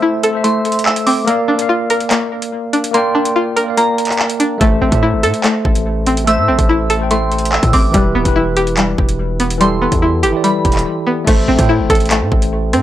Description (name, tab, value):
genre	hip hop, drill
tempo	144 BPM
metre	4/4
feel	half-time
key	A minor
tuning	A4 = 438 Hz
part	tine electric piano	accompaniment	0.0-12.8 s	E3 to G5	-18 LUFS	equal	medium stereo tremolo, low-pass filter
part	string-like resonator pluck	arpeggios	0.0-12.8 s	G3 to Bb4	-17 LUFS	left 1 dB	chorus, low-pass filter, analog delay
part	drill drum kit	drums	0.2-12.8 s	crash cymbal, handclaps, hi-hat, kick drum, rim click	-17 LUFS	equal	none
part	soft synth bell	second line	0.4-10.8 s	Bb5 to E6	-20 LUFS	right 2 dB	chorus, analog delay
part	distorted 808-style bass	bass	4.6-12.8 s	D1 to A2	-18 LUFS	equal	distortion, tube saturation
room	little or no reverb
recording	dry, gritty hardware recording, transformer saturation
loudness	-12 LUFS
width	side -12 dB against mid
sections	0.0-11.3 A section; 11.3-12.8 B section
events	break 0.0-4.6, 10.9-11.3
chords	0.0 Am; 1.3 Bb; 4.6 Am; 7.9 Em; 11.3 Am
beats	0.02 0.44 0.86 | 1.27 1.69 2.11 2.52 | 2.94 3.36 3.77 4.19 | 4.61 5.02 5.44 5.86 | 6.27 6.69 7.11 7.52 | 7.94 8.36 8.77 9.19 | 9.61 10.02 10.44 10.86 | 11.27 11.69 12.11 12.52